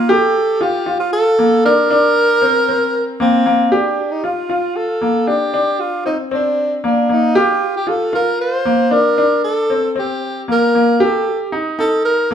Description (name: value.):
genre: progressive instrumental, progressive.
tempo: 115 BPM.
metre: 7/4.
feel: straight.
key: unclear.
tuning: A4 = 444 Hz.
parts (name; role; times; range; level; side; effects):
breathy tenor saxophone; melody; 0.0-12.3 s; C4 to C5; -16 LUFS; right 1 dB; none.
clear grand piano; arpeggios; 0.0-12.3 s; Bb3 to G4; -16 LUFS; left 1 dB; none.
room: wet large studio reverb, RT60 0.9 s.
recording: band playing live in one room.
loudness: -13 LUFS.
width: side -8 dB against mid.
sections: 0.0-3.7 A section; 3.7-12.3 B section.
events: none.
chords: 0.0 Gm7/Bb; 11.0 Eb.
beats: | 0.10 0.62 1.13 1.65 2.17 2.68 3.20 | 3.72 4.24 4.76 5.28 5.80 6.32 6.84 | 7.36 7.88 8.40 8.92 9.44 9.96 10.48 | 11.00 11.53 12.05.